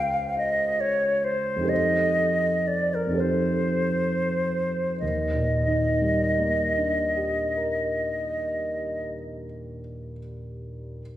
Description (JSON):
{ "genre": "classical, impressionist duo for flute and grand piano", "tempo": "31-50 BPM (dotted quarters)", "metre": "6/8", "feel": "rubato", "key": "Eb lydian", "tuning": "A4 = 440 Hz", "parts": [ { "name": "hollow concert flute", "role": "melody", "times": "0.0-9.1 s", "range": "Bb4 to F5", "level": "-24 LUFS", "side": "equal", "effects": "none" }, { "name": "dark concert grand piano", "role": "accompaniment", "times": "0.0-11.0 s", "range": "Db2 to C5", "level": "-27 LUFS", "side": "equal", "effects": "none" } ], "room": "wet recital hall reverb, RT60 1.8 s", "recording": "recorded in a church or concert hall", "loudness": "-22 LUFS", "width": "side -13 dB against mid", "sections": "0.0-5.0 A section; 5.0-8.7 B section", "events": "slowing down 0.0-5.0", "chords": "0.0 Dbmaj7; 1.7 F9; 5.0 Ebmaj7" }